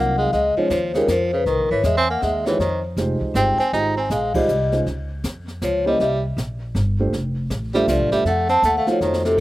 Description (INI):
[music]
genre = jazz, small-group swing and bop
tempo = 159 BPM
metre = 3/4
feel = swing 63% on 8ths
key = F minor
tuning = A4 = 441 Hz
[part]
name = vibraphone with soft mallets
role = melody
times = 0.0-9.4 s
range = A4 to Bb5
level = -20 LUFS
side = left 2 dB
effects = slapback echo
[part]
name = bright tenor saxophone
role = second line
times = 0.0-9.4 s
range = C3 to Eb4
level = -24 LUFS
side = right 3 dB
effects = slapback echo
[part]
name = dark baby grand piano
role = accompaniment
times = 0.0-9.4 s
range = Gb3 to C5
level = -24 LUFS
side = right 2 dB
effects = none
[part]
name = upright bass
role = bass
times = 0.0-9.4 s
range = F1 to F2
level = -24 LUFS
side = equal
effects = none
[part]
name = jazz brush drum kit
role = drums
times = 0.3-9.4 s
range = brushed snare drum, crash cymbal, hi-hat, kick drum, snare drum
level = -31 LUFS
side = equal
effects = none
[sound]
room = little or no reverb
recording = recorded outdoors, with no room sound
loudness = -18 LUFS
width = side -16 dB against mid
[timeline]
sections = 0.0-4.9 A section; 4.9-9.4 B section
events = band accent 4.3; drum fill 9.0-9.4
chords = 0.3 Dbmaj7; 1.5 C7alt; 2.6 Fm9; 4.9 Db; 6.0 C5; 7.1 F69; 8.3 F7b9